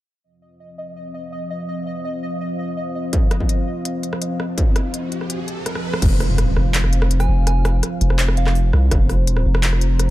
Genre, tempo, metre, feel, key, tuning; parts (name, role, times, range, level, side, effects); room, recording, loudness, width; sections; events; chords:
half-time drum and bass; 166 BPM; 4/4; half-time; A4 = 440 Hz
dark analog pad; sustained chords; 0.8-10.1 s; F3 to Bb5; -26 LUFS; left 1 dB; chorus, sidechain pumping
pulsing gated texture; texture; 0.6-6.0 s; Eb5; -33 LUFS; right 1 dB; chorus, built-in reverb
electronic kick drum; drums; 3.1-6.1, 8.9-9.0 s; -18 LUFS; equal; distortion
industrial drum kit; drums; 3.1-10.1 s; crash cymbal, handclaps, hi-hat, rim click; -25 LUFS; equal
riser and impact; sound effects; 4.5-7.5 s; -27 LUFS; equal
long sustained 808-style bass; bass; 6.0-10.1 s; F1 to C2; -16 LUFS; equal
soft synth bell; melody; 7.2-8.5 s; F5 to Ab5; -32 LUFS; right 4 dB; chorus, vintage 12-bit sampler grit, ping-pong delay
little or no reverb; -17 LUFS; side -16 dB against mid
0.2-6.0 A section; 6.0-10.1 B section
riser 4.5-6.0; kick drops out 5.7-6.0; drum fill 5.7-6.0; drop 6.0-10.1; impact 6.0-7.5
0.2 F5